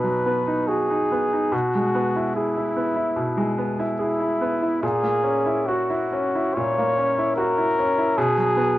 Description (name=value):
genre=classical, romantic duo for trumpet and grand piano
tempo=65-76 BPM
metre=4/4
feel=rubato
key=B major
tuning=A4 = 438 Hz
part: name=mellow trumpet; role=melody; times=0.0-8.8 s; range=E4 to C#5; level=-22 LUFS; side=left 1 dB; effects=none
part: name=bright grand piano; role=accompaniment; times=0.0-8.8 s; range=A#2 to G#4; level=-23 LUFS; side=equal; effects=none
room=moderate studio reverb, RT60 0.9 s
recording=worn, warbling old tape, cassette tape, warbly pitch drift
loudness=-20 LUFS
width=side -15 dB against mid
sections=0.0-8.8 A section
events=none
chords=0.0 B; 1.5 E/B; 4.8 F#7/A#; 8.2 B5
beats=0.67 | 1.52 2.35 3.17 3.99 | 4.83 5.67 6.56 7.37 | 8.17